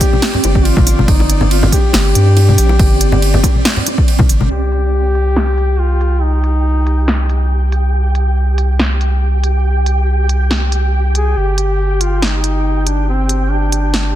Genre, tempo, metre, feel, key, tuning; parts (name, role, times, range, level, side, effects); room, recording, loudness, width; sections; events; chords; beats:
deep dubstep; 140 BPM; 4/4; swing 54% on 16ths, half-time; C minor; A4 = 440 Hz
mellow duduk; melody; 0.0-7.7, 11.2-14.2 s; C4 to Ab4; -20 LUFS; left 2 dB; dub echo
deep house drum kit; drums; 0.0-14.0 s; hi-hat, ride cymbal, snare drum; -18 LUFS; right 1 dB; low-pass filter on hats, low-pass filter on snare, low-pass filter on cymbals, low-pass filter on room
electronic kick drum; drums; 0.0-4.3 s; -12 LUFS; equal
flickering grainy texture; texture; 0.0-14.2 s; C4 to G5; -22 LUFS; right 2 dB; built-in reverb
congas and bongos; percussion; 0.1-4.5 s; -19 LUFS; left 2 dB
saturated sub bass; bass; 0.4-14.2 s; G1 to G2; -13 LUFS; equal
light reverb; dense, heavily limited modern master; -11 LUFS; side -12 dB against mid
0.0-4.5 A section; 4.5-14.2 B section
drop 0.0-4.5; filter sweep on drum 4.5-14.2
0.0 G5; 4.5 Cm; 11.4 G5
0.22 0.65 | 1.08 1.51 1.94 2.37 | 2.79 3.22 3.65 4.08 | 4.51 4.94 5.37 5.79 | 6.22 6.65 7.08 7.51 | 7.94 8.37 8.79 9.22 | 9.65 10.08 10.51 10.94 | 11.37 11.79 12.22 12.65 | 13.08 13.51 13.94